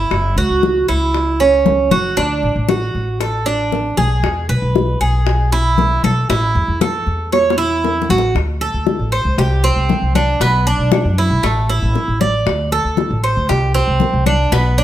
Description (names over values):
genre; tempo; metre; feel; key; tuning
latin, Cuban son and guajira; 117 BPM; 4/4; straight; D major; A4 = 440 Hz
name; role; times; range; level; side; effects
Cuban tres; arpeggios; 0.0-14.8 s; A3 to D5; -17 LUFS; right 3 dB; none
upright bass; bass; 0.0-14.8 s; F#1 to F#2; -17 LUFS; equal; none
bongos; percussion; 0.1-14.8 s; none; -23 LUFS; left 7 dB; none
claves; percussion; 0.1-14.5 s; none; -32 LUFS; left 8 dB; none
congas; percussion; 0.1-14.8 s; none; -22 LUFS; left 5 dB; none
room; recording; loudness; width
light reverb; none; -13 LUFS; side -12 dB against mid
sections
0.0-8.4 A section; 8.4-14.8 B section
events
drum fill 7.3-8.4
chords
0.1 F#5; 2.2 D; 4.2 E; 6.3 A; 8.4 D5; 9.4 C5; 10.4 Bm; 11.4 A5; 12.5 D5; 13.5 C5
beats
| 0.11 0.63 1.14 1.66 | 2.17 2.69 3.20 3.72 | 4.24 4.75 5.26 5.78 | 6.29 6.81 7.32 7.84 | 8.35 8.87 9.38 9.90 | 10.41 10.92 11.44 11.95 | 12.47 12.98 13.49 14.01 | 14.52